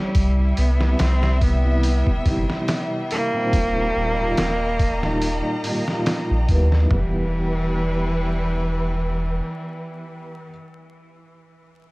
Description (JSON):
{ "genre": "trip hop", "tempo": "71 BPM", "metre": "4/4", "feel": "swing 55% on 16ths", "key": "unclear", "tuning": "A4 = 436 Hz", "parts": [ { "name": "rich cello", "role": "melody", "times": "0.0-10.5 s", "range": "E3 to C4", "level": "-26 LUFS", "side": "equal", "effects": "tape echo" }, { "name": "warm symphonic violin section", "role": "sustained chords", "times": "0.0-10.5 s", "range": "G3 to A#5", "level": "-31 LUFS", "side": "equal", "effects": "none" }, { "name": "trip hop sampler-style drum kit", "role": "drums", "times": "0.1-7.1 s", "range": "hi-hat, kick drum, snare drum, toms", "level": "-24 LUFS", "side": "equal", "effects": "studio reverb" }, { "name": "soft dub sub bass", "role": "bass", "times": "0.2-9.4 s", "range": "D#1 to D#2", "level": "-21 LUFS", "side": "equal", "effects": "none" }, { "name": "felt-muted upright piano", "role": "accompaniment", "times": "0.8-10.5 s", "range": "A#2 to B4", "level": "-27 LUFS", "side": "equal", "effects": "tremolo, vintage 12-bit sampler grit, tape echo" } ], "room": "small room ambience", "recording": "worn, warbling old tape, cassette tape, vinyl crackle, warbly pitch drift", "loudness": "-18 LUFS", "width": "side -24 dB against mid", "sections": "0.0-6.9 A section; 6.9-10.3 B section", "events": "none", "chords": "0.2 C; 3.5 D#; 6.9 Em" }